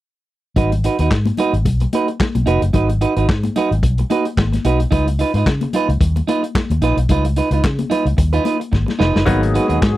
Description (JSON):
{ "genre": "disco", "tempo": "110 BPM", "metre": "4/4", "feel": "swing 56% on 16ths", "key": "G# dorian", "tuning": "A4 = 441 Hz", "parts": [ { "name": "clean electric guitar", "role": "accompaniment", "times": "0.6-9.8 s", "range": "D#4 to B4", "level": "-19 LUFS", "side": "right 4 dB", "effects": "none" }, { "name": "fingered electric bass with an envelope filter", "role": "bass", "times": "0.6-10.0 s", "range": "E#1 to C#3", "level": "-17 LUFS", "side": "equal", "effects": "none" }, { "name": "vintage drum kit", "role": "drums", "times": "0.6-10.0 s", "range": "handclaps, hi-hat, kick drum, snare drum", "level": "-20 LUFS", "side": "left 1 dB", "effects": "none" }, { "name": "congas", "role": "percussion", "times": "0.6-9.5 s", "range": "none", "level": "-25 LUFS", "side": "left 4 dB", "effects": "none" }, { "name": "mellow clav", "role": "accompaniment", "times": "9.3-10.0 s", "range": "F#3 to D#4", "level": "-20 LUFS", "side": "left 3 dB", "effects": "none" }, { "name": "warm brass ensemble", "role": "sustained chords", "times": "9.3-10.0 s", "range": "G#3 to G#4", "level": "-22 LUFS", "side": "left 2 dB", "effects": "none" } ], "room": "little or no reverb", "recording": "dry, close 1970s-style studio recording", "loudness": "-14 LUFS", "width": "side -15 dB against mid", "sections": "0.6-10.0 A section", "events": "drum fill 8.7-9.3", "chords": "0.6 G#m7; 4.9 C#9", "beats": "| 0.57 1.11 1.66 2.20 | 2.74 3.29 3.83 4.38 | 4.92 5.46 6.01 6.55 | 7.09 7.64 8.18 8.73 | 9.27 9.81" }